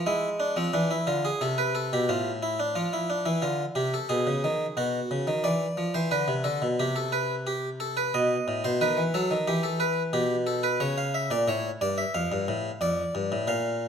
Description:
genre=classical, baroque-style two-part invention for harpsichord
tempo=90 BPM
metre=4/4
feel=straight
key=unclear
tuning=A4 = 439 Hz
part: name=harpsichord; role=solo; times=0.0-13.9 s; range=F2 to F5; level=-25 LUFS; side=equal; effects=none
room=wet recital hall reverb, RT60 1.3 s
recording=close, detailed microphones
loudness=-25 LUFS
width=side -7 dB against mid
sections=0.0-2.8 A section; 2.8-13.9 B section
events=none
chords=0.1 E7; 1.4 Am; 2.8 Cadd11; 4.1 B; 5.4 E5; 6.8 Am/C; 8.1 B7; 9.5 Em; 10.8 A7; 12.2 Dm/F

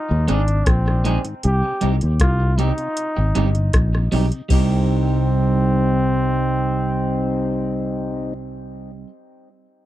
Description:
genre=roots reggae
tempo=78 BPM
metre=4/4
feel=straight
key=C minor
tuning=A4 = 439 Hz
part: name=clear trombone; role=melody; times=0.0-8.3 s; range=C4 to G4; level=-26 LUFS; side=equal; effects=tape echo
part: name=mellow tonewheel organ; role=accompaniment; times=0.1-8.3 s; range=Ab2 to Eb4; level=-28 LUFS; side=left 4 dB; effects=slow rotary speaker, tape echo
part: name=fingered electric bass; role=bass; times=0.1-9.0 s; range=G1 to Eb2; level=-19 LUFS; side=equal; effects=none
part: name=electric guitar at the edge of break-up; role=accompaniment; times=0.3-9.1 s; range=G3 to Ab4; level=-26 LUFS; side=right 8 dB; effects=tape echo
part: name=soft vintage rhythm box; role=drums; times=0.3-4.7 s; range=crash cymbal, hi-hat, kick drum, rim click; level=-20 LUFS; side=equal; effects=none
room=little or no reverb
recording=dry, close 1970s-style studio recording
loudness=-17 LUFS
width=side -14 dB against mid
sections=0.0-4.5 A section; 4.5-7.6 B section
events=none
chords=0.0 Ab; 1.4 Cm

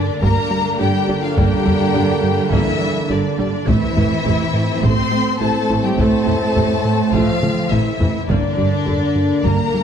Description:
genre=cinematic, hybrid orchestral and electronic film score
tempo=104 BPM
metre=4/4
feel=straight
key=G dorian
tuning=A4 = 435 Hz
part: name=warm symphonic violin section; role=melody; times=0.0-9.8 s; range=D5 to C6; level=-24 LUFS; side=left 6 dB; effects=none
part: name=warm symphonic violin section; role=second line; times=0.0-9.8 s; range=D4 to C5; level=-25 LUFS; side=left 5 dB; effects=none
part: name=warm symphonic viola section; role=accompaniment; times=0.0-9.8 s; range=C3 to D4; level=-26 LUFS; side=right 1 dB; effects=none
part: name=dark trombone section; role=sustained chords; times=0.0-9.8 s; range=A2 to Bb3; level=-24 LUFS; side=right 4 dB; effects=none
part: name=mellow French horn section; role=sustained chords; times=0.0-9.8 s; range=C4 to C5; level=-27 LUFS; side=left 2 dB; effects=none
part: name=plucky analog bass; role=riff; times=0.0-9.8 s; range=G2 to A3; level=-22 LUFS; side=right 1 dB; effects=none
part: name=warm symphonic cello section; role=bass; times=0.0-9.8 s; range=D3 to C4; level=-23 LUFS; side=right 3 dB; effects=none
part: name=mallet-like synth pluck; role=arpeggios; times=0.2-9.6 s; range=G3 to E4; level=-28 LUFS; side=right 3 dB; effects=none
part: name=warm symphonic double bass section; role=bass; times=0.2-9.5 s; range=G1 to A1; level=-23 LUFS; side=right 3 dB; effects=none
part: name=taiko ensemble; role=drums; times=0.2-9.8 s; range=none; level=-23 LUFS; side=left 2 dB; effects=none
room=moderate scoring stage reverb, RT60 1.9 s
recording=dark, warm production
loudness=-15 LUFS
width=side -8 dB against mid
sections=0.0-9.8 A section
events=drum fill 7.4-8.3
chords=0.0 Gm; 3.7 Am; 8.3 Gm

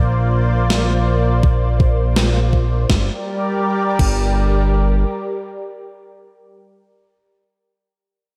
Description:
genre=synthwave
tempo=82 BPM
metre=4/4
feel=straight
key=G minor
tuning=A4 = 440 Hz
part: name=lush unison pad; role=sustained chords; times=0.0-6.6 s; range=G3 to D5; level=-24 LUFS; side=equal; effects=chorus, phaser, vintage 12-bit sampler grit, sidechain pumping
part: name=fat analog bass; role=bass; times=0.0-5.1 s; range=G1 to Bb1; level=-19 LUFS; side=equal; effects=none
part: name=gated 80s digital drum machine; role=drums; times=0.7-4.2 s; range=crash cymbal, snare drum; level=-25 LUFS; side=equal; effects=gated reverb, gated reverb snare, overdrive
part: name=electronic kick drum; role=drums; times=1.4-4.2 s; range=none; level=-18 LUFS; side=equal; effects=overdrive
room=moderate plate reverb, RT60 2.5 s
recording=dreamy mix soaked in reverb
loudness=-17 LUFS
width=mono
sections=0.0-2.9 A section; 2.9-5.8 B section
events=none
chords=0.0 Bbadd9; 2.9 Gm

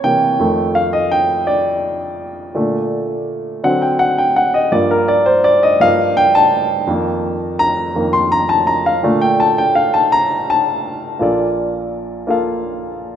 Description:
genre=gospel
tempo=56 BPM (dotted quarters)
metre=6/8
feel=straight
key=Bb major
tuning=A4 = 440 Hz
part: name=warm grand piano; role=solo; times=0.0-13.2 s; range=Bb1 to C6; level=-13 LUFS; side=equal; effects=none
room=moderate lush hall reverb, RT60 2.2 s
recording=rough home demo mix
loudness=-13 LUFS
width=side -9 dB against mid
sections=0.0-11.2 A section; 11.2-13.2 B section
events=grand piano solo 0.0-11.2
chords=0.4 F6; 2.6 Bbmaj7; 3.6 D7; 4.7 Gm7; 6.9 F7sus4; 9.0 Bbmaj7

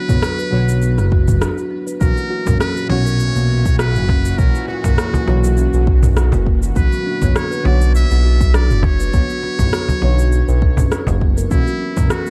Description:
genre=organic downtempo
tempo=101 BPM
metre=4/4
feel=swing 54% on 16ths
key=B harmonic minor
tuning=A4 = 436 Hz
part: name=trumpet with metal mute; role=melody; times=0.0-12.3 s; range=E4 to E5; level=-28 LUFS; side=equal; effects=tape echo
part: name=deep mellow chord stab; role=accompaniment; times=0.0-12.3 s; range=A#2 to C#5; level=-28 LUFS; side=equal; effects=chorus, sidechain pumping, tape echo
part: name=kalimba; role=arpeggios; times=0.0-12.3 s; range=F#3 to B4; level=-26 LUFS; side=equal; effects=tape echo
part: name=smooth synth bass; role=bass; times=0.1-12.1 s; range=F#1 to B1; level=-18 LUFS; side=equal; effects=sidechain pumping
part: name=deep house drum kit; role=drums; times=0.1-12.3 s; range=rim click, shaker, toms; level=-24 LUFS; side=equal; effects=overdrive
part: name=electronic kick drum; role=drums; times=0.1-12.1 s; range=none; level=-19 LUFS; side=equal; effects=overdrive
part: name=bowed-like drone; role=sustained chords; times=2.8-12.3 s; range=A#2 to F#4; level=-32 LUFS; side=equal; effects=built-in reverb, sidechain pumping
part: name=cajon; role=percussion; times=2.5-12.1 s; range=none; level=-23 LUFS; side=equal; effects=none
room=digital ambience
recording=dark, warm production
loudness=-16 LUFS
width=mono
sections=0.0-12.3 A section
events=break 1.4-2.0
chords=0.0 Bmadd9; 2.0 F#7; 6.8 Bmadd9; 11.5 F#7

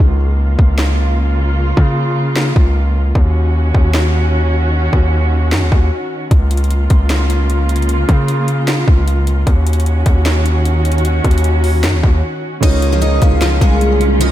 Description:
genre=hip hop, trap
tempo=152 BPM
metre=4/4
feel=half-time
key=Db major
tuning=A4 = 440 Hz
part: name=dark symphonic string section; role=sustained chords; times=0.0-14.3 s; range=Db3 to Gb4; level=-20 LUFS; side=right 1 dB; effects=none
part: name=distorted 808-style bass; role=bass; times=0.0-14.3 s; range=C2 to Db3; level=-14 LUFS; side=equal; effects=distortion
part: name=trap drum kit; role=drums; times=0.6-14.3 s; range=crash cymbal, hi-hat, kick drum, snare drum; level=-15 LUFS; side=equal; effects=none
part: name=picked steel-string acoustic guitar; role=melody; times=12.6-14.3 s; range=F3 to Eb5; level=-19 LUFS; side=left 1 dB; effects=analog chorus, ping-pong delay
part: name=soft octave-layered synth lead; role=second line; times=12.6-13.8 s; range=Db5 to F5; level=-22 LUFS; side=left 2 dB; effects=chorus, ping-pong delay
part: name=dark baby grand piano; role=accompaniment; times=12.6-14.3 s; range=Db3 to F4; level=-20 LUFS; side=right 5 dB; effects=wide subtle chorus
room=light reverb, small room ambience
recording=none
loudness=-11 LUFS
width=side -13 dB against mid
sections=0.0-12.6 A section; 12.6-14.3 B section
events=break 0.0-6.3, 12.2-12.6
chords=0.0 Db6; 3.2 Ebm7; 6.3 Db6; 9.5 Ebm7; 12.6 Db6

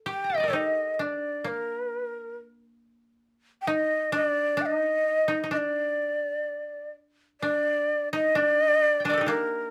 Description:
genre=japanese traditional, Japanese chamber music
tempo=62-68 BPM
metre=2/4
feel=rubato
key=D miyako bushi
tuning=A4 = 441 Hz
part: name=koto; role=second line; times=0.0-9.7 s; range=Bb3 to Bb5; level=-33 LUFS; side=equal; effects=none
part: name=breathy shakuhachi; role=melody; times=0.1-9.7 s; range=Bb4 to G5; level=-27 LUFS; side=equal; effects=none
room=light reverb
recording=none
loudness=-26 LUFS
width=mono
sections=0.0-7.4 A section; 7.4-9.7 B section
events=none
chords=none

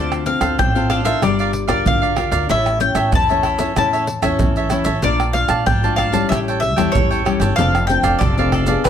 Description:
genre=samba and choro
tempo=94 BPM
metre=4/4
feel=straight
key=unclear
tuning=A4 = 440 Hz
part: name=bowl-back mandolin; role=second line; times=0.0-8.9 s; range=B4 to A5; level=-20 LUFS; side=left 2 dB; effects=none
part: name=cavaquinho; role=accompaniment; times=0.0-8.9 s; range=D4 to A5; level=-23 LUFS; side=right 6 dB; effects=none
part: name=nylon-string guitar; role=accompaniment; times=0.0-8.9 s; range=A2 to Bb4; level=-22 LUFS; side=left 6 dB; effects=none
part: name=upright bass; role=bass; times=0.0-8.9 s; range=E1 to E2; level=-22 LUFS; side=equal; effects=none
part: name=maracas, pandeiro, tamborim and surdo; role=percussion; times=0.1-8.9 s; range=none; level=-21 LUFS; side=right 2 dB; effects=none
room=light reverb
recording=none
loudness=-15 LUFS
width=side -9 dB against mid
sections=0.0-8.9 A section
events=mandolin solo 0.0-8.9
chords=0.0 Dm7; 1.2 Gm7; 2.5 A; 5.0 Bbmaj7; 6.3 A7; 7.6 F6

